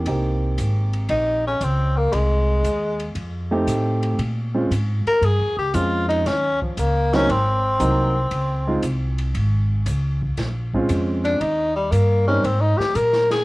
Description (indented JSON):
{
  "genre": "jazz, small-group swing and bop",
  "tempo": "116 BPM",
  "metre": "4/4",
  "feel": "swing 69% on 8ths",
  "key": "Ab major",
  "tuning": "A4 = 440 Hz",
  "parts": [
    { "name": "warm baby grand piano", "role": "accompaniment", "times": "0.0-12.4 s", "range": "Gb3 to G4", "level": "-24 LUFS", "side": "right 1 dB", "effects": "cassette tape, plate reverb" },
    { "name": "upright bass", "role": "bass", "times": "0.0-13.4 s", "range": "Ab1 to Bb2", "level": "-22 LUFS", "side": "equal", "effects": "none" },
    { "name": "open jazz drum kit", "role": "drums", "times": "0.1-13.4 s", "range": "hi-hat, kick drum, ride cymbal, snare drum", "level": "-34 LUFS", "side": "equal", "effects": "cassette tape" },
    { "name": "growling tenor saxophone", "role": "melody", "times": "1.1-13.4 s", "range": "F3 to Bb4", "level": "-20 LUFS", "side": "left 1 dB", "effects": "plate reverb" }
  ],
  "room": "light reverb",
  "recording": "home recording on cassette",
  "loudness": "-18 LUFS",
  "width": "side -20 dB against mid",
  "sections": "0.1-13.4 A section",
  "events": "none",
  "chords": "0.1 Abmaj9; 2.1 Ab/C; 3.2 F7; 4.2 Bbm7; 6.3 Ebm7; 7.3 Ab7; 8.3 Dbmaj7(no3); 10.4 Bbm7; 11.4 Eb; 12.4 Absus2",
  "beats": "| 0.05 0.57 1.09 1.60 | 2.12 2.64 3.15 3.67 | 4.19 4.71 5.22 5.74 | 6.25 6.77 7.29 7.80 | 8.32 8.83 9.35 9.86 | 10.38 10.89 11.41 11.92 | 12.44 12.95"
}